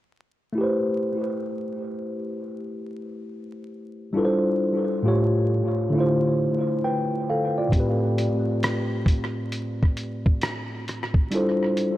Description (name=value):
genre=lo-fi hip hop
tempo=67 BPM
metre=4/4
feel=swing 64% on 16ths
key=A minor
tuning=A4 = 440 Hz
part: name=tine electric piano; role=accompaniment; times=0.5-12.0 s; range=A2 to G5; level=-23 LUFS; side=equal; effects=overdrive, slow stereo tremolo, tape echo
part: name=dusty soul sampler-style drum kit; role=drums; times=7.7-12.0 s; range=hi-hat, kick drum, rim click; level=-23 LUFS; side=equal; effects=vintage 12-bit sampler grit, tape echo
room=moderate plate reverb, RT60 3.3 s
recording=echo-heavy mix, vinyl crackle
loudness=-22 LUFS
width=side -15 dB against mid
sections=0.6-12.0 A section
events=none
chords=0.6 Am7; 4.2 G13sus4; 5.0 A7b13; 5.9 Dm9; 7.7 Am7; 11.3 G13sus4